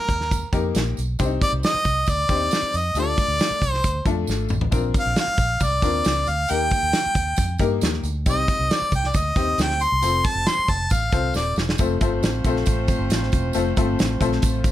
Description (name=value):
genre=uptempo 1960s-style soul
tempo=136 BPM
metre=4/4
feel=straight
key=unclear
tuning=A4 = 440 Hz
part: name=clear harmonica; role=melody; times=0.0-11.6 s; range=Bb4 to C6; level=-22 LUFS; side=equal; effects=none
part: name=bright upright piano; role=accompaniment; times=0.0-14.7 s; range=A3 to C5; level=-27 LUFS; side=left 7 dB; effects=none
part: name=vintage muted fingered electric bass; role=bass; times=0.1-14.7 s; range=Eb1 to G2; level=-25 LUFS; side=equal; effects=none
part: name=natural country drum kit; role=drums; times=0.1-14.7 s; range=hi-hat, kick drum, snare drum, toms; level=-23 LUFS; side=equal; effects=none
part: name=tambourine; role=percussion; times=0.1-14.7 s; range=none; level=-38 LUFS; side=right 5 dB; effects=none
part: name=warm horn section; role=second line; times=11.8-14.7 s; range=A3 to C5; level=-28 LUFS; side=right 1 dB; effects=none
room=light reverb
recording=none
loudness=-19 LUFS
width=side -13 dB against mid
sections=0.0-11.8 A section; 11.8-14.7 B section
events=harmonica solo 0.0-11.8; drum fill 4.3-4.7, 11.4-11.8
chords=0.0 Eb; 1.2 Cm; 3.0 Dm; 4.7 Bbadd9; 6.5 Eb; 8.3 Cm; 10.0 F